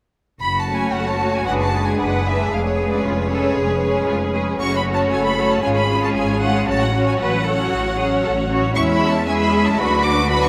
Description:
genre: quick classical-period movement for string orchestra.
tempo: 115 BPM.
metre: 4/4.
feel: rubato.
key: F# minor.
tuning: A4 = 440 Hz.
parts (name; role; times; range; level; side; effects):
warm studio violin section; melody; 0.4-10.5 s; C#5 to D6; -25 LUFS; equal; none.
bright studio cello section; bass; 0.4-10.5 s; E4 to B4; -28 LUFS; equal; none.
rich studio double bass section; bass; 0.4-10.5 s; E#1 to E2; -26 LUFS; equal; none.
rich studio violin section; second line; 0.7-10.5 s; E4 to E5; -25 LUFS; equal; none.
warm studio viola section; accompaniment; 0.7-10.5 s; F#3 to D4; -24 LUFS; equal; none.
room: wet cathedral reverb, RT60 5.9 s.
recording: in a vast, echoing space.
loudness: -19 LUFS.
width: mono.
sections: 0.4-10.5 A section.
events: none.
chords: 0.4 F#m; 1.5 G#m7b5/F#; 2.5 C#7/E#; 4.6 F#m; 5.6 C#/G#; 6.7 F#m/A; 8.8 C#m/E; 9.8 Bm/D.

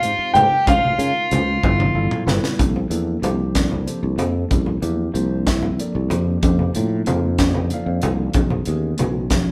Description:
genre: electric jazz fusion.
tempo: 62 BPM (dotted quarters).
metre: 6/8.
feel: straight.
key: unclear.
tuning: A4 = 440 Hz.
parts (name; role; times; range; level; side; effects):
clear grand piano; melody; 0.0-2.2 s; F5 to G5; -20 LUFS; equal; none.
overdriven electric guitar; second line; 0.0-2.2 s; F4 to G4; -25 LUFS; equal; none.
tine electric piano; accompaniment; 0.0-9.5 s; E3 to G5; -28 LUFS; equal; none.
sustaining fretless electric bass; bass; 0.0-9.5 s; G1 to Db3; -24 LUFS; equal; none.
crisp fusion drum kit; drums; 0.0-9.5 s; hi-hat, kick drum, snare drum, toms; -25 LUFS; equal; none.
congas; percussion; 0.4-9.5 s; none; -26 LUFS; equal; none.
room: wet studio reverb, RT60 0.7 s.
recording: band playing live in one room.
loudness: -19 LUFS.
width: mono.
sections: 0.0-2.6 A section; 2.6-9.5 B section.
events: drum fill 1.6-2.6; tine electric piano fill 1.6-2.6.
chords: 0.0 Abmaj9; 0.7 Dbmaj9; 1.6 G13; 2.6 C13sus4; 6.4 F13sus4; 8.4 B13sus4.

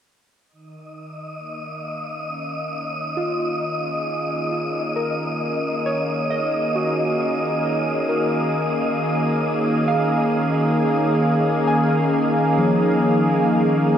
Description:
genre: ambient.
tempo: 67 BPM.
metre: 4/4.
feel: straight.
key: unclear.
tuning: A4 = 441 Hz.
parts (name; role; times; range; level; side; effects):
warm analog pad; sustained chords; 0.5-14.0 s; Eb3 to F5; -21 LUFS; equal; wide subtle chorus.
wind-like tuned noise texture; texture; 0.9-14.0 s; Eb5 to Eb6; -27 LUFS; left 1 dB; built-in reverb.
muted felt-like synth keys; arpeggios; 3.2-14.0 s; F3 to Ab5; -25 LUFS; right 1 dB; chorus, analog delay.
room: wet lush hall reverb, RT60 2.9 s.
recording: dreamy mix soaked in reverb, cassette tape.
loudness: -19 LUFS.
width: side -9 dB against mid.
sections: 0.5-14.0 A section.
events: fade-in on analog synth pad 0.5-14.0.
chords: 0.5 Ebm11.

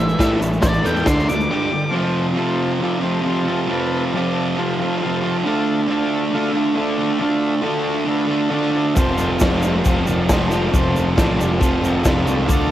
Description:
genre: garage rock duo or trio.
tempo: 136 BPM.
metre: 4/4.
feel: straight.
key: unclear.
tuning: A4 = 441 Hz.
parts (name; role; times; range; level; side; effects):
octave-fuzz lead guitar; melody; 0.0-1.9 s; D5 to D6; -24 LUFS; left 1 dB; distortion, cassette tape.
combo organ; sustained chords; 0.0-12.7 s; D4 to F5; -27 LUFS; left 1 dB; none.
fuzz guitar; riff; 0.0-12.7 s; F2 to D4; -18 LUFS; right 1 dB; distortion.
growling picked electric bass; bass; 0.0-1.5, 9.0-12.7 s; F1 to A2; -24 LUFS; equal; overdrive.
egg shaker; percussion; 0.1-1.5, 9.0-12.6 s; none; -36 LUFS; right 4 dB; none.
raw garage drum kit; drums; 0.2-1.2, 9.0-12.6 s; crash cymbal, kick drum, snare drum; -20 LUFS; equal; cassette tape.
room: light reverb, small room reverb.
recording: home recording on cassette.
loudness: -16 LUFS.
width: side -12 dB against mid.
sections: 0.0-1.9 A section; 1.9-12.7 B section.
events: lead electric guitar solo 0.0-1.9; break 1.5-1.9.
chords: 0.0 Am; 1.1 D5; 1.5 G5; 1.9 F; 5.4 Dm; 9.0 F.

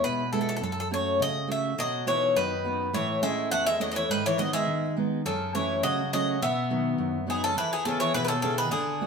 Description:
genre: greek folk, Greek bouzouki band.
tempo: 104 BPM.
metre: 2/4.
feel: straight.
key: E major.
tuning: A4 = 440 Hz.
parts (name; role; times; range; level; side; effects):
Greek bouzouki; melody; 0.0-9.1 s; G#4 to F#5; -27 LUFS; left 1 dB; none.
fingerpicked steel-string acoustic guitar; accompaniment; 0.0-9.1 s; E2 to G#4; -29 LUFS; right 2 dB; none.
Greek bouzouki; second line; 1.8-9.1 s; C#3 to B3; -32 LUFS; left 2 dB; none.
room: wet studio reverb, RT60 0.8 s.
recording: band playing live in one room.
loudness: -24 LUFS.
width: side -5 dB against mid.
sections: 0.0-7.6 A section; 7.6-9.1 B section.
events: none.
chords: 0.0 E; 0.6 F#m; 1.8 B; 2.9 A; 4.1 G#m; 5.3 F#m; 6.4 B; 7.6 E.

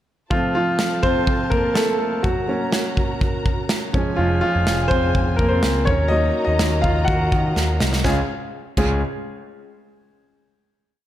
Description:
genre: piano-driven pop.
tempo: 124 BPM.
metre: 4/4.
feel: straight.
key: Db major.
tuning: A4 = 439 Hz.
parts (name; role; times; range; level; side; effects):
clear grand piano; accompaniment; 0.3-9.0 s; Db2 to Gb5; -21 LUFS; equal; none.
dark studio string section; sustained chords; 0.3-8.3 s; Db4 to Bb5; -30 LUFS; left 1 dB; none.
modern studio drum kit; drums; 0.3-8.9 s; crash cymbal, kick drum, snare drum; -23 LUFS; equal; none.
overdriven picked electric bass; bass; 4.2-9.0 s; F1 to Eb3; -21 LUFS; equal; none.
room: light reverb, studio reverb.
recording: none.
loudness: -17 LUFS.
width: side -12 dB against mid.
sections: 0.3-8.0 verse; 8.0-10.0 final chord.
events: grand piano solo 0.3-8.0; drum fill 7.6-8.0.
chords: 0.3 F; 2.2 Gb; 3.9 Db/F; 5.9 Ebm; 8.0 Db.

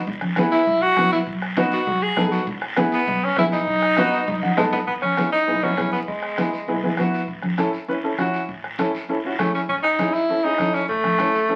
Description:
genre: latin, cumbia.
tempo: 200 BPM.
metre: 4/4.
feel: straight.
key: E major.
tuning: A4 = 440 Hz.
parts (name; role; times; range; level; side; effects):
upright bass; bass; 0.0-11.6 s; A1 to F#2; -35 LUFS; equal; none.
bombo; percussion; 0.1-11.3 s; none; -34 LUFS; equal; none.
congas; percussion; 0.1-11.6 s; none; -29 LUFS; equal; none.
guiro; percussion; 0.1-11.6 s; none; -36 LUFS; equal; none.
warm upright piano; accompaniment; 0.4-11.5 s; B3 to A5; -26 LUFS; equal; none.
bright tenor saxophone; second line; 0.5-6.9, 9.4-11.6 s; G#3 to G#4; -23 LUFS; equal; none.
room: wet studio reverb, RT60 0.6 s.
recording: very old 78 rpm record, vinyl crackle.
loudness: -21 LUFS.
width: mono.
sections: 0.0-4.9 A section; 4.9-11.6 B section.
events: tenor saxophone solo 0.0-4.9, 4.9-11.6; upright piano fill 4.3-4.9; drum fill 4.4-4.9.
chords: 0.1 E; 1.3 B7; 2.5 E; 3.7 B7; 4.9 E; 7.3 A.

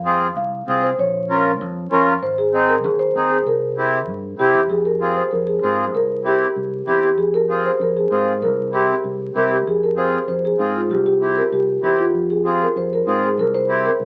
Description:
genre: latin, cumbia.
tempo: 194 BPM.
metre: 4/4.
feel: straight.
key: F harmonic minor from 4.7 s.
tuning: A4 = 438 Hz.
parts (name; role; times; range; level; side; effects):
marimba with soft mallets; melody; 0.0-14.1 s; F4 to F5; -21 LUFS; equal; none.
accordion; accompaniment; 0.0-13.9 s; C4 to Bb4; -22 LUFS; equal; none.
fingered electric bass; bass; 0.0-14.1 s; Ab1 to Ab2; -32 LUFS; equal; none.
room: wet club reverb, RT60 0.7 s.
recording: very old 78 rpm record, vinyl crackle.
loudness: -19 LUFS.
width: mono.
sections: 0.0-4.7 A section; 4.7-14.1 B section.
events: none.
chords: 0.0 Fm; 1.0 Bbm; 2.2 Ab; 3.5 C7; 4.7 Fm; 5.9 C7; 7.2 Fm; 8.4 C7; 9.7 Fm; 10.9 C; 12.1 Fm; 13.4 C7.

